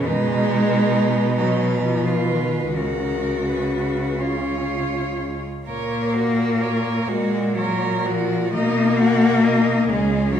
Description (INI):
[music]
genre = classical, lyrical piece for cello ensemble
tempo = 40-47 BPM (dotted quarters)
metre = 6/8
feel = rubato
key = F# major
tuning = A4 = 438 Hz
[part]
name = rich cello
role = melody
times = 0.0-10.4 s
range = G#4 to F#5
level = -28 LUFS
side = left 4 dB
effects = none
[part]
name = clear cello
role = second line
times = 0.0-10.4 s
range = C#4 to A#4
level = -26 LUFS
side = right 4 dB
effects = none
[part]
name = rich cello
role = accompaniment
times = 0.0-10.4 s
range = C#3 to A#3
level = -21 LUFS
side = left 2 dB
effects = none
[part]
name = rich cello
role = bass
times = 0.0-10.4 s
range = C#2 to B2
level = -25 LUFS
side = right 2 dB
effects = none
[sound]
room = wet recital hall reverb, RT60 1.6 s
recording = recorded in a church or concert hall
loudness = -18 LUFS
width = side -9 dB against mid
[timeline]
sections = 0.0-10.4 A section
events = none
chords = 0.1 B; 2.8 F#/C#; 5.7 F#/A#; 8.5 B; 9.9 C#5